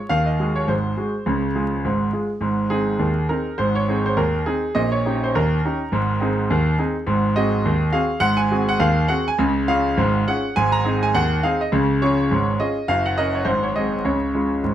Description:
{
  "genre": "ragtime piano",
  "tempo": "103 BPM",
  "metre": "2/4",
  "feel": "swing 57% on 16ths",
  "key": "unclear",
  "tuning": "A4 = 440 Hz",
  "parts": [
    { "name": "clear grand piano", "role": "solo", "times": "0.0-14.7 s", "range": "Gb1 to Bb5", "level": "-18 LUFS", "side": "right 1 dB", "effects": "none" }
  ],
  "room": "moderate studio reverb, RT60 0.5 s",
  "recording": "dark, warm production, vinyl crackle",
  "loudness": "-18 LUFS",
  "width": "side -11 dB against mid",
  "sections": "0.0-14.7 A section",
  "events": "none",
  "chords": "0.1 Ab7/Eb; 1.3 Db; 2.4 Ab; 4.7 Eb7/Bb; 5.9 Ab; 7.1 Ab7; 9.4 Db; 10.6 Ab; 11.7 Db; 12.9 Gb; 13.5 Ab; 14.0 Db"
}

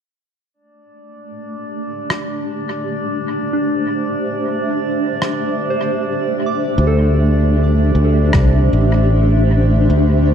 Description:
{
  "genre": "ambient dub",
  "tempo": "77 BPM",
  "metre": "4/4",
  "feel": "swing 59% on 16ths",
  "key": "A minor",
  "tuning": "A4 = 438 Hz",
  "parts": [
    { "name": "granular cloud pad", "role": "sustained chords", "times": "1.3-10.3 s", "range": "A3 to E5", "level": "-20 LUFS", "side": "equal", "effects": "built-in reverb" },
    { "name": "drifting glass-harmonics texture", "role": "texture", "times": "1.0-10.3 s", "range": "D4 to D5", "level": "-26 LUFS", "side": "equal", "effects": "chorus, built-in reverb" },
    { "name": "rim click", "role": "drums", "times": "2.1-8.5 s", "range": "none", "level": "-24 LUFS", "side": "equal", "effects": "dub echo" },
    { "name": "soft synth bell", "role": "arpeggios", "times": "3.5-10.3 s", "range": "D4 to D6", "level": "-24 LUFS", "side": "right 1 dB", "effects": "chorus, low-pass filter, tape echo" },
    { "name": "modern bright fingered electric bass", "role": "bass", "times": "6.8-10.3 s", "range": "A1 to D2", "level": "-13 LUFS", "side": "equal", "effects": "none" },
    { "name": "electronic kick drum", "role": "drums", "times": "8.3-8.5 s", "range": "none", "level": "-16 LUFS", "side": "equal", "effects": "none" }
  ],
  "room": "light reverb",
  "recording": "dark, warm production",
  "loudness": "-14 LUFS",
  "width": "side -8 dB against mid",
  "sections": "0.5-10.3 A section",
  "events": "filter sweep on ambient pad 0.5-10.3",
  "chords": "0.5 Am7"
}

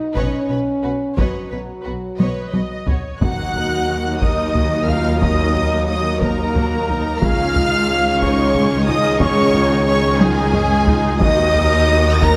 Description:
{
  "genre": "cinematic, epic orchestral film score",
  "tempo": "60 BPM (dotted quarters)",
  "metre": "6/8",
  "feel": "straight",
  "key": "Eb minor from 3.2 s",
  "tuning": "A4 = 440 Hz",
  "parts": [
    { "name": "warm French horn section", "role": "sustained chords", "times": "0.0-12.4 s", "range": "F#3 to Bb4", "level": "-26 LUFS", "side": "equal", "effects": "none" },
    { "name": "warm symphonic cello section", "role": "bass", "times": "0.1-12.4 s", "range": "Db2 to B2", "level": "-26 LUFS", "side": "equal", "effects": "none" },
    { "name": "warm symphonic violin section", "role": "melody", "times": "0.2-12.4 s", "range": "B4 to Bb6", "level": "-27 LUFS", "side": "equal", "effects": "none" },
    { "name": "warm symphonic violin section", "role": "second line", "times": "0.2-12.4 s", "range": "F#4 to Bb5", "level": "-29 LUFS", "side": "equal", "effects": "none" },
    { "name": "rich symphonic viola section", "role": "accompaniment", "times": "0.2-12.4 s", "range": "Bb3 to D#5", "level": "-29 LUFS", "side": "equal", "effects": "none" },
    { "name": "clear symphonic double bass section", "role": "bass", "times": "0.2-12.4 s", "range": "B1 to Eb2", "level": "-26 LUFS", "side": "equal", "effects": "none" },
    { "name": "taiko ensemble", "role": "drums", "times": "0.2-12.4 s", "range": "none", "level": "-24 LUFS", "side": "equal", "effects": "none" },
    { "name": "mellow hollow flute section", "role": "second line", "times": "3.2-12.4 s", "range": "Ab4 to Bb5", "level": "-30 LUFS", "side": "equal", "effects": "none" },
    { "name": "rich symphonic string section", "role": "sustained chords", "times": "3.2-12.4 s", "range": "Eb4 to Eb5", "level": "-31 LUFS", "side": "equal", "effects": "none" },
    { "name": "warm trombone section", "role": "sustained chords", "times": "3.2-12.4 s", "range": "Eb3 to Bb3", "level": "-29 LUFS", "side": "equal", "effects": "none" },
    { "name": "warm trumpet section", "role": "stabs", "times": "3.2-12.4 s", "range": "Ab4 to Bb5", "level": "-26 LUFS", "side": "equal", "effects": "none" },
    { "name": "timpani", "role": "percussion", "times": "3.2-4.2, 11.2-12.2 s", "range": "Eb3", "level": "-30 LUFS", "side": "equal", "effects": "none" }
  ],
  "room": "wet scoring stage reverb, RT60 1.8 s",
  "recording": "none",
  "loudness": "-17 LUFS",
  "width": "mono",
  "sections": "0.0-3.2 A section; 3.2-12.4 A section",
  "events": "drum fill 2.2-3.2, 10.2-11.2",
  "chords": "0.0 Badd9; 3.2 Ebm; 7.2 Dbadd9; 11.2 Ebm"
}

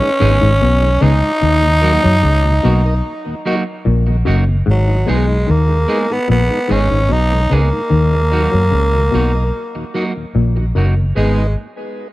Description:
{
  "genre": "reggae",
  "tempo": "74 BPM",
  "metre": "4/4",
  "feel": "straight",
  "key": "G# minor",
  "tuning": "A4 = 440 Hz",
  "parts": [
    { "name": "growling tenor saxophone", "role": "melody", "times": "0.0-11.6 s", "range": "F#3 to D#4", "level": "-17 LUFS", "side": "equal", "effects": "tape echo" },
    { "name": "tonewheel organ", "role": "accompaniment", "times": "0.0-11.5 s", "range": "D#2 to D#4", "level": "-26 LUFS", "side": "left 1 dB", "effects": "slow rotary speaker, tape echo" },
    { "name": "clean electric guitar", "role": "accompaniment", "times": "0.2-11.4 s", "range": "F#3 to G#4", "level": "-24 LUFS", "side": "right 3 dB", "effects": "spring reverb, tape echo" },
    { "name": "muted clav", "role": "riff", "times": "0.2-11.0 s", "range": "F#2 to F#3", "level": "-20 LUFS", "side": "left 4 dB", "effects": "overdrive, phaser" },
    { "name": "vintage muted fingered electric bass", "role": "bass", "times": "0.2-11.5 s", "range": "F#1 to F#2", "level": "-14 LUFS", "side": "equal", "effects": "none" }
  ],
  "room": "little or no reverb",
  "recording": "dry, close 1970s-style studio recording",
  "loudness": "-12 LUFS",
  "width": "side -18 dB against mid",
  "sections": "0.0-4.7 A section; 4.7-11.2 B section",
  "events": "none",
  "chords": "0.0 G#m; 1.4 D#m; 4.7 G#m; 7.9 D#m; 11.2 G#m"
}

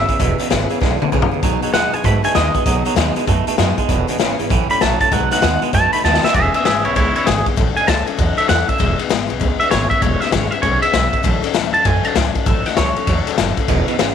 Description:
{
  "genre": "rockabilly",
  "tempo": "196 BPM",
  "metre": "4/4",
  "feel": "swing 64% on 8ths",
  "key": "E major",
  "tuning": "A4 = 440 Hz",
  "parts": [
    { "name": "twangy electric guitar", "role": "melody", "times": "0.0-13.7 s", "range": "E4 to B5", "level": "-18 LUFS", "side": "right 1 dB", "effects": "tape echo" },
    { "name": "picked steel-string acoustic guitar", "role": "accompaniment", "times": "0.0-14.1 s", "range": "A2 to A4", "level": "-24 LUFS", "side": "left 10 dB", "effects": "none" },
    { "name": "twangy electric guitar", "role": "riff", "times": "0.0-6.3, 13.7-14.1 s", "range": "E2 to A3", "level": "-21 LUFS", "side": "right 17 dB", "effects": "spring reverb" },
    { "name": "upright bass", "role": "bass", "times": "0.0-14.1 s", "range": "E1 to G#2", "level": "-21 LUFS", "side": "right 2 dB", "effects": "none" },
    { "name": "raw garage drum kit", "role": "drums", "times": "0.1-14.1 s", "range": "hi-hat, kick drum, ride cymbal, snare drum, toms", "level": "-18 LUFS", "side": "left 4 dB", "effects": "none" }
  ],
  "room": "light reverb, small room ambience",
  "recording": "1960s-style stereo with parts hard left and right",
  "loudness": "-14 LUFS",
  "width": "side -8 dB against mid",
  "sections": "0.0-6.3 A section; 6.3-14.1 B section",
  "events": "drum fill 0.8-1.4, 6.0-6.3; clean electric guitar solo 6.3-14.1",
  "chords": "0.0 E6; 1.4 B6; 3.9 E6; 4.5 A6; 5.1 B6; 6.3 E6; 7.6 A6; 8.8 E6; 11.2 A6"
}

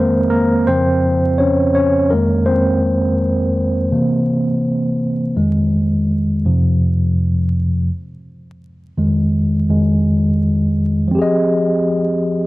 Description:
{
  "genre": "hip hop",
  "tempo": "83 BPM",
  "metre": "4/4",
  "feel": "swing 58% on 16ths",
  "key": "F minor",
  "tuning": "A4 = 439 Hz",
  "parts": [
    { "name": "tine electric piano", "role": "solo", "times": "0.0-12.5 s", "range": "F2 to Eb5", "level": "-14 LUFS", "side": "equal", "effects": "medium stereo tremolo, cassette tape" }
  ],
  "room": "light reverb",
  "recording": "worn, warbling old tape, cassette tape, vinyl crackle, warbly pitch drift",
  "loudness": "-14 LUFS",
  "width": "side -19 dB against mid",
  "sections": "0.0-11.1 A section; 11.1-12.5 B section",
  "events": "tine electric piano solo 0.0-11.1",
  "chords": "0.0 Fm7; 0.7 Dbmaj7/F; 2.1 Fm7; 3.9 C7; 5.4 Fm7; 6.4 F5; 7.9 Fm7; 11.1 Fm9"
}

